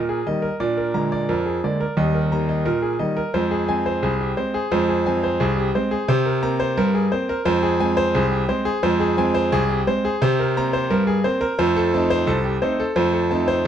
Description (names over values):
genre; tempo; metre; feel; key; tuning
ragtime piano; 87 BPM; 2/4; straight; unclear; A4 = 439 Hz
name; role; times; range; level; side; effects
bright grand piano; solo; 0.0-13.7 s; C2 to Bb5; -18 LUFS; equal; none
room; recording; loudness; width
moderate studio reverb, RT60 0.6 s; dark, warm production; -18 LUFS; side -9 dB against mid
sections
0.0-13.7 A section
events
none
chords
0.0 Eb; 0.6 Bb7; 2.0 Eb; 3.3 Fm; 6.1 C5; 7.5 Fm; 10.2 C5; 11.6 F7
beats
| 0.59 1.28 | 1.97 2.66 | 3.34 4.03 | 4.72 5.40 | 6.09 6.78 | 7.46 8.15 | 8.83 9.52 | 10.21 10.90 | 11.59 12.27 | 12.96 13.65